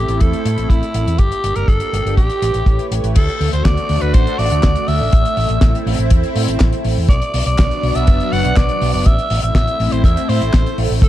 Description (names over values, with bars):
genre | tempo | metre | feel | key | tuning
italo disco | 122 BPM | 4/4 | straight | A dorian from 3.2 s | A4 = 440 Hz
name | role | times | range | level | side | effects
raspy alto saxophone | melody | 0.0-11.1 s | E4 to F#5 | -21 LUFS | equal | ping-pong delay
lush unison pad | sustained chords | 0.0-11.1 s | F#3 to C#5 | -22 LUFS | right 1 dB | chorus, phaser
hollow-body short-scale fingered electric bass | bass | 0.0-11.1 s | F#1 to A2 | -18 LUFS | equal | none
damped 70s drum kit | drums | 0.1-11.1 s | crash cymbal, handclaps, hi-hat, snare drum | -24 LUFS | left 2 dB | studio reverb
kick drum | drums | 0.2-11.1 s | none | -13 LUFS | equal | studio reverb
room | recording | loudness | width
light reverb, small room ambience | dark, warm production | -13 LUFS | side -13 dB against mid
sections
0.0-3.2 A section; 3.2-11.1 B section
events
none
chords
0.0 Am; 1.2 Gm; 2.2 A7; 3.2 D; 5.1 Am; 7.1 Bm; 9.1 Am